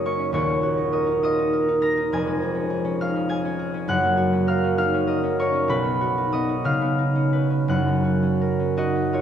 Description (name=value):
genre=classical, solo harp piece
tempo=55-69 BPM (dotted quarters)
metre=6/8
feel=rubato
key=F# major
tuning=A4 = 440 Hz
part: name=concert harp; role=solo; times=0.0-9.2 s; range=D#1 to A#6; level=-20 LUFS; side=equal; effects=none
room=wet cathedral reverb, RT60 5.4 s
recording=dark, warm production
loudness=-20 LUFS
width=side -9 dB against mid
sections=0.0-9.2 A section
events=none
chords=0.3 D#m; 2.1 C#/E#; 3.9 F#; 5.7 B; 6.7 C#9; 7.7 F#